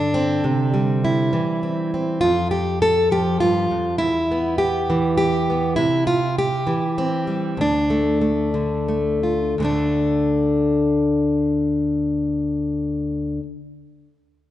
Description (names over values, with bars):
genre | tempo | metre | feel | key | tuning
folk, solo fingerstyle acoustic guitar | 83-102 BPM | 3/4 | straight | D dorian | A4 = 440 Hz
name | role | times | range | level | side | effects
fingerpicked plugged-in steel-string acoustic guitar | solo | 0.0-13.4 s | D2 to A4 | -18 LUFS | equal | none
room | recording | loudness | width
moderate scoring stage reverb, RT60 1.6 s | recorded in a church or concert hall, nothing above 10.6 kHz | -18 LUFS | side -13 dB against mid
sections
0.0-9.6 A section; 9.6-13.9 B section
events
slowing down 5.8-9.6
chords
0.4 Cadd9; 2.2 Fadd9; 4.0 Em; 5.8 C; 7.6 Dm; 9.6 D5